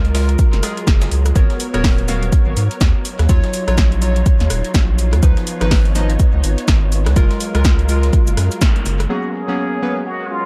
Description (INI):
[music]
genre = deep house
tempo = 124 BPM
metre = 4/4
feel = swing 59% on 16ths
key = G# dorian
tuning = A4 = 440 Hz
[part]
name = soft string machine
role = sustained chords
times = 0.0-10.5 s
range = F#3 to C#5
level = -31 LUFS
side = equal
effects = ensemble chorus, sidechain pumping
[part]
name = warm analog keys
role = stabs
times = 0.0-10.0 s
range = E#3 to E#5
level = -26 LUFS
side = equal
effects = chorus, sidechain pumping, dub echo
[part]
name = round analog bass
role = bass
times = 0.0-9.1 s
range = D#1 to G#2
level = -19 LUFS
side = equal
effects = none
[part]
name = deep house drum kit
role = drums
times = 0.0-10.3 s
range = crash cymbal, hi-hat, rim click, snare drum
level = -26 LUFS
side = equal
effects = overdrive, low-pass filter on hats, low-pass filter on snare, low-pass filter on cymbals
[part]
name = breakbeat sampler-style drum kit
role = drums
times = 0.1-9.0 s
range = hi-hat, shaker, snare drum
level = -35 LUFS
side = equal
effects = none
[part]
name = electronic kick drum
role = drums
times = 0.4-8.7 s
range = none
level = -16 LUFS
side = equal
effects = overdrive
[part]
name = trumpet with plunger mute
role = melody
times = 9.1-10.5 s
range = E#4 to G#4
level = -26 LUFS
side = equal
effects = dub echo
[sound]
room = digital ambience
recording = echo-heavy mix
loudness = -16 LUFS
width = mono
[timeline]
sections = 0.0-9.1 A section; 9.1-10.5 B section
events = band accent 8.6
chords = 0.0 F#maj9; 1.4 G#m11; 3.0 D#m9; 5.2 C#9; 7.2 F#maj9; 9.1 G#m11